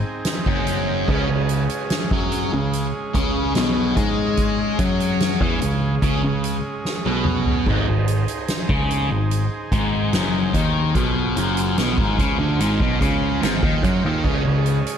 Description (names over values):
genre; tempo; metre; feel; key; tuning
psychedelic rock; 73 BPM; 4/4; straight; Ab mixolydian; A4 = 440 Hz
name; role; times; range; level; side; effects
combo organ; sustained chords; 0.0-15.0 s; Ab3 to C5; -29 LUFS; right 2 dB; none
picked electric bass; bass; 0.0-14.8 s; Gb1 to Ab2; -25 LUFS; equal; none
soft-mallet drum kit; drums; 0.2-15.0 s; crash cymbal, hi-hat, kick drum, snare drum, toms; -24 LUFS; equal; none
thick fuzz guitar; riff; 0.5-14.8 s; Gb2 to Ab3; -21 LUFS; left 1 dB; distortion, phaser
room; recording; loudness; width
light reverb, studio reverb; none; -18 LUFS; side -8 dB against mid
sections
0.0-15.0 A section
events
drum fill 6.8-7.7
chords
0.0 Ab; 1.1 Db5; 7.7 Ab; 14.2 Db5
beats
0.27 | 1.09 1.92 2.74 3.56 | 4.39 5.21 6.03 6.85 | 7.67 8.49 9.31 10.13 | 10.95 11.77 12.59 13.42 | 14.24